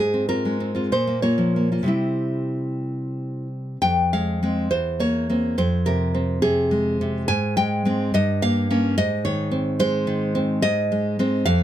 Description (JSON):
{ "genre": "romantic piece for solo classical guitar", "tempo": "60-73 BPM (dotted quarters)", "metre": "6/8", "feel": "rubato", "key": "F minor", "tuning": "A4 = 441 Hz", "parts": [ { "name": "nylon-string guitar", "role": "solo", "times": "0.0-11.6 s", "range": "E2 to Ab5", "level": "-20 LUFS", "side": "equal", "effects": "none" } ], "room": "light reverb", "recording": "close, detailed microphones", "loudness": "-20 LUFS", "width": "side -11 dB against mid", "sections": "0.0-3.8 A section; 3.8-11.6 B section", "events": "none", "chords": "0.0 Fm/Ab; 0.9 Bbm; 1.9 C; 3.8 Fm; 4.7 C7/E; 5.6 Fm; 7.3 Ab; 8.1 Gm7b5; 9.0 Ab", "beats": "0.92 | 1.89 2.86 | 3.83 4.71 | 5.58 6.43 | 7.28 8.14 | 8.97 9.80 | 10.63 11.47" }